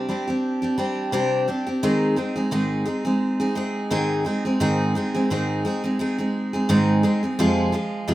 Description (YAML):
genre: pop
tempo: 86 BPM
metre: 4/4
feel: swing 55% on 16ths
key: unclear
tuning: A4 = 438 Hz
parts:
  - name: picked steel-string acoustic guitar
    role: solo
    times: 0.0-8.1 s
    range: F2 to Ab4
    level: -20 LUFS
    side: equal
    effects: none
room: small room ambience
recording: rough home demo mix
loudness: -20 LUFS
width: side -15 dB against mid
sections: 0.0-4.6 A section; 4.6-7.4 B section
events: none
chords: 0.0 Csus2; 1.8 Ab; 7.4 Fm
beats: 0.44 1.13 | 1.83 2.52 3.22 3.91 | 4.60 5.30 5.99 6.69 | 7.38 8.07